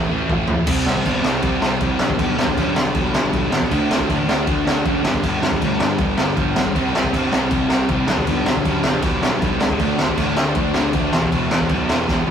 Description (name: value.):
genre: punk rock.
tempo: 158 BPM.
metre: 4/4.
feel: straight.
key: unclear.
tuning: A4 = 439 Hz.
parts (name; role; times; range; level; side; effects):
distorted electric guitar; riff; 0.0-12.3 s; E2 to D4; -27 LUFS; left 8 dB; distortion.
sludgy distorted guitar; riff; 0.0-12.3 s; E2 to D4; -25 LUFS; right 7 dB; overdrive.
thick fuzz guitar; riff; 0.0-12.3 s; E2 to D4; -24 LUFS; left 1 dB; distortion.
fuzz picked electric bass; bass; 0.0-12.3 s; E1 to B2; -26 LUFS; left 1 dB; overdrive.
raw garage drum kit; drums; 0.3-12.3 s; crash cymbal, kick drum, snare drum, toms; -20 LUFS; equal; none.
room: light reverb.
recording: rough rehearsal-room recording, warm saturation.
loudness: -16 LUFS.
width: side -8 dB against mid.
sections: 0.7-12.3 A section.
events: drum fill 0.0-0.7, 12.1.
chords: 0.0 A; 0.7 C5; 2.0 G/B; 3.7 D; 5.0 G5; 6.8 C5; 8.1 G/B; 9.8 D5; 11.1 E5.